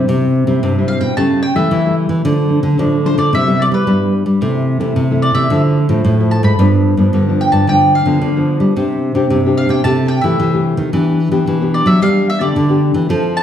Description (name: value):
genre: samba and choro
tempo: 111 BPM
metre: 4/4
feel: straight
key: C major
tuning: A4 = 440 Hz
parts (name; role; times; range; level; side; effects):
- nylon-string guitar; accompaniment; 0.0-13.4 s; G2 to A4; -16 LUFS; left 2 dB; none
- nylon-string guitar; bass; 0.0-13.4 s; G2 to G3; -14 LUFS; right 1 dB; none
- mandolin; melody; 0.9-13.4 s; B4 to B5; -18 LUFS; equal; none
room: wet large studio reverb, RT60 1.1 s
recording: heard from further back in the room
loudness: -12 LUFS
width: side -9 dB against mid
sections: 0.1-13.4 A section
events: none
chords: 0.1 C; 1.2 A7/C#; 2.3 Dm; 3.3 Cmaj7; 4.4 Am/C; 5.5 Dmadd9; 6.6 G7; 8.8 Csus2; 9.9 Am7/C; 10.9 Em7; 12.0 G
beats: | 0.08 0.63 1.17 1.71 | 2.25 2.80 3.34 3.88 | 4.42 4.97 5.51 6.05 | 6.60 7.14 7.68 8.22 | 8.77 9.31 9.85 10.40 | 10.94 11.48 12.02 12.56 | 13.11